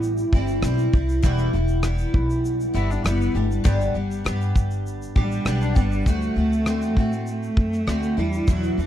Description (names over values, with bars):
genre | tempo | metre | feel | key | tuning
acoustic pop | 99 BPM | 4/4 | straight | unclear | A4 = 441 Hz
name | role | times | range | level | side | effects
picked steel-string acoustic guitar | accompaniment | 0.0-8.9 s | E2 to G4 | -26 LUFS | equal | double-tracked left and right
upright bass | bass | 0.0-8.9 s | E1 to A2 | -24 LUFS | equal | none
cloth-damped thuddy drum kit | drums | 0.0-8.9 s | kick drum, rim click, shaker | -19 LUFS | equal | none
warm cello | second line | 2.8-6.2 s | G3 to E4 | -30 LUFS | left 6 dB | none
clear cello | melody | 5.2-8.9 s | E3 to A3 | -25 LUFS | right 1 dB | none
room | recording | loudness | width
small room ambience | dry, close 1970s-style studio recording | -20 LUFS | side -11 dB against mid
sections
0.0-6.1 A section; 6.1-8.9 B section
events
none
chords
0.0 C; 1.2 Em; 3.3 G; 6.1 D7; 8.2 Em7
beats
0.02 0.63 | 1.23 1.83 2.44 3.04 | 3.65 4.25 4.85 5.46 | 6.06 6.67 7.27 7.88 | 8.48